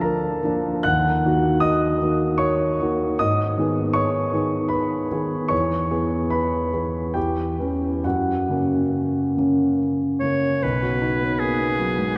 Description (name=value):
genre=classical, romantic duo for oboe and grand piano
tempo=66-79 BPM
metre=3/4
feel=rubato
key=B major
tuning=A4 = 439 Hz
part: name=warm concert grand piano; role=accompaniment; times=0.0-12.2 s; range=B1 to F#6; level=-22 LUFS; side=equal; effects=none
part: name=clear oboe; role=melody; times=10.2-12.2 s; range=G#4 to C#5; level=-26 LUFS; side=equal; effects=none
room=wet cathedral reverb, RT60 4.8 s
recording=dark, warm production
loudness=-22 LUFS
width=mono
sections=0.0-10.6 A section; 10.6-12.2 B section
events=none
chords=0.0 Bb/D; 0.8 D#m; 3.2 G#m; 5.5 C#m7/E; 7.2 C#m7b5/E; 8.0 F#; 10.6 B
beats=0.02 | 0.84 1.61 2.39 | 3.18 3.95 4.73 | 5.51 6.32 7.16 | 8.04 8.93 9.78 | 10.62 11.40 12.16